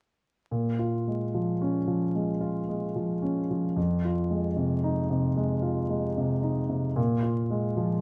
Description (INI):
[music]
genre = neoclassical minimalist piano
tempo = 74 BPM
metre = 4/4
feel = rubato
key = Bb minor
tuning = A4 = 439 Hz
[part]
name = warm concert grand piano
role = solo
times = 0.5-8.0 s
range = F2 to F4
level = -28 LUFS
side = equal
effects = none
[sound]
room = moderate studio reverb, RT60 0.6 s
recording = rough home demo mix, vinyl crackle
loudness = -28 LUFS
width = mono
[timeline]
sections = 0.5-8.0 A section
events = none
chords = 0.5 Bbm7; 3.8 Fm7; 7.0 Bb7(no3)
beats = | 0.51 1.34 2.15 2.96 | 3.77 4.57 5.38 6.19 | 6.98 7.76